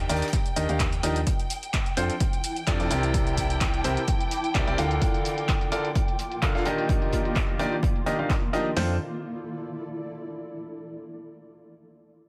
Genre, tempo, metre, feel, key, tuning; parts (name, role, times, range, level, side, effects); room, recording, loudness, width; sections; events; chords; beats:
piano house; 128 BPM; 4/4; swing 54% on 16ths; F major; A4 = 441 Hz
dark studio string section; sustained chords; 0.0-8.8 s; G5; -37 LUFS; equal; sidechain pumping, low-pass filter
clear concert grand piano; riff; 0.0-8.9 s; C3 to F5; -31 LUFS; equal; sidechain pumping, low-pass filter, tape echo
solid FM bass; bass; 0.0-5.0, 8.8-9.0 s; C2 to F2; -31 LUFS; equal; sidechain pumping
punchy analog drum machine; drums; 0.1-8.7 s; handclaps, hi-hat, shaker; -36 LUFS; equal; low-pass filter on hats, low-pass filter on perc, low-pass filter on snare
warm soul drum kit; drums; 0.1-8.7 s; hi-hat, snare drum; -44 LUFS; equal; high-pass filter on hats, high-pass filter on snare, high-pass filter on room
punchy analog drum machine; drums; 0.3-8.9 s; hi-hat, kick drum, snare drum; -29 LUFS; equal
granular cloud pad; texture; 2.4-10.6 s; Eb3 to D6; -37 LUFS; equal; built-in reverb, sidechain pumping
light reverb, small room reverb; -26 LUFS; mono
0.0-1.3 A section; 1.3-8.8 B section; 8.8-10.6 C section
filter sweep on string section 1.3-8.8
0.0 Ebmaj7; 1.3 F6; 2.9 C7; 4.8 Bbmaj7/D; 6.9 Ebmaj7; 8.8 F6
0.33 0.80 | 1.27 1.74 2.21 2.67 | 3.14 3.61 4.08 4.55 | 5.02 5.49 5.96 6.42 | 6.89 7.36 7.83 8.30 | 8.77 9.24 9.71 10.17